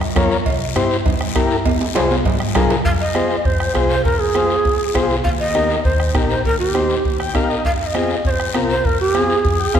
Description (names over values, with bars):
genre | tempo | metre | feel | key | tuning
latin, cumbia | 200 BPM | 4/4 | straight | F minor | A4 = 436 Hz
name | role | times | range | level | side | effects
upright bass | bass | 0.0-9.8 s | Bb1 to Ab2 | -23 LUFS | equal | none
bombo | percussion | 0.0-9.8 s | none | -22 LUFS | right 1 dB | none
combo organ | accompaniment | 0.2-9.8 s | C4 to G5 | -21 LUFS | left 3 dB | none
congas | percussion | 0.2-9.8 s | none | -25 LUFS | right 2 dB | none
cowbell and timbales | percussion | 0.2-2.7 s | none | -29 LUFS | right 4 dB | none
guiro | percussion | 0.2-9.8 s | none | -30 LUFS | left 6 dB | none
breathy mellow shakuhachi | melody | 2.9-9.8 s | G4 to F5 | -19 LUFS | right 2 dB | none
room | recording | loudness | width
wet concert hall reverb, RT60 1.8 s | recorded in a church or concert hall | -15 LUFS | side -8 dB against mid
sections
0.0-2.9 A section; 2.9-9.8 B section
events
drum fill 1.7-2.9; transistor combo organ fill 7.0-7.7, 9.4-9.8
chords
0.5 C7; 1.7 Fm; 5.3 Eb; 7.7 Fm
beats
0.16 | 0.46 0.76 1.06 1.36 | 1.66 1.95 2.25 2.55 | 2.85 3.15 3.45 3.75 | 4.05 4.35 4.65 4.95 | 5.25 5.55 5.85 6.15 | 6.45 6.75 7.05 7.35 | 7.65 7.95 8.25 8.55 | 8.85 9.15 9.45 9.75